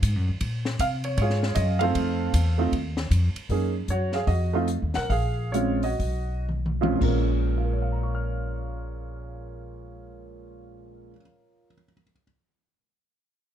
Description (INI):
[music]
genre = jazz piano trio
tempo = 109-156 BPM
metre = 4/4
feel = swing 64% on 8ths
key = Bb minor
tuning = A4 = 440 Hz
[part]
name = upright bass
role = bass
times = 0.0-11.1 s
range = Bb1 to C3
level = -25 LUFS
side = equal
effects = none
[part]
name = open jazz drum kit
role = drums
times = 0.0-7.2 s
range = crash cymbal, hi-hat, kick drum, ride cymbal, snare drum, toms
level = -32 LUFS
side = left 2 dB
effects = none
[part]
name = warm concert grand piano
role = melody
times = 0.8-12.2 s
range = Bb2 to F6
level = -28 LUFS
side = right 3 dB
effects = plate reverb
[sound]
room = little or no reverb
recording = dark, warm production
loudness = -23 LUFS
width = side -10 dB against mid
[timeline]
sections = 0.0-3.5 A section; 3.5-7.0 B section; 7.0-11.4 C section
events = slowing down 3.5-7.0; drum fill 6.5-7.0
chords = 0.4 Bbm9; 2.0 F7; 3.5 Gb6; 4.3 F7(no3); 5.1 Bbm9; 6.0 B; 7.0 Bbm7